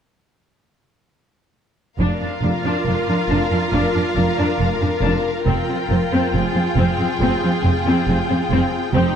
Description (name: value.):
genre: cinematic.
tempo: 69 BPM.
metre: 4/4.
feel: straight.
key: F dorian.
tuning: A4 = 440 Hz.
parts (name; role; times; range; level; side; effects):
warm symphonic violin section; second line; 2.0-9.2 s; G4 to G5; -24 LUFS; left 4 dB; none.
clear symphonic viola section; accompaniment; 2.0-9.2 s; C4 to F4; -21 LUFS; equal; none.
rich symphonic cello section; bass; 2.0-9.0 s; F2; -22 LUFS; right 2 dB; none.
rich symphonic double bass section; bass; 2.0-9.0 s; F1; -23 LUFS; right 2 dB; none.
room: moderate scoring stage reverb, RT60 1.5 s.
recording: dark, warm production.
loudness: -16 LUFS.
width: side -8 dB against mid.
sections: 2.0-9.2 A section.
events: none.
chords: 2.0 Bb/F; 5.5 Fmadd9.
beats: | 1.99 2.86 3.73 4.60 | 5.47 6.34 7.21 8.07 | 8.94.